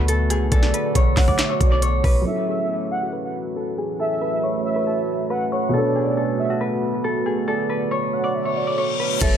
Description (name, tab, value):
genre	hip hop, trap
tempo	138 BPM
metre	4/4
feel	half-time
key	unclear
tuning	A4 = 436 Hz
part	Celtic harp	melody	0.0-9.4 s	F#4 to D5	-24 LUFS	equal	low-pass filter, dub echo
part	dark concert grand piano	accompaniment	0.0-9.2 s	B2 to A4	-28 LUFS	equal	low-pass filter, dub echo
part	deep dark ambient pad	sustained chords	0.0-9.4 s	D3 to F#4	-27 LUFS	right 2 dB	chorus, built-in reverb, low-pass filter
part	clean 808-style bass	bass	0.0-2.2, 9.2-9.4 s	F#1 to D2	-20 LUFS	equal	none
part	trap drum kit	drums	0.1-2.1, 9.2-9.3 s	crash cymbal, handclaps, hi-hat, kick drum, rim click, snare drum	-20 LUFS	equal	none
part	warm velvety synth lead	second line	0.5-9.4 s	D5 to F#5	-27 LUFS	right 1 dB	chorus, dub echo
part	reverse cymbal and downlifter	sound effects	8.5-9.4 s	none	-27 LUFS	left 7 dB	none
room	light reverb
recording	echo-heavy mix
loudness	-19 LUFS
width	side -9 dB against mid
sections	0.0-2.3 A section; 2.3-9.2 B section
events	filter sweep 2.3-9.2; reverse cymbal 8.5-9.2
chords	0.0 Bm7; 2.3 F#m7; 5.7 Bm7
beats	0.08 | 0.52 0.95 1.39 1.82 | 2.26 2.69 3.13 3.56 | 4.00 4.43 4.87 5.30 | 5.74 6.17 6.61 7.04 | 7.47 7.91 8.35 8.78 | 9.21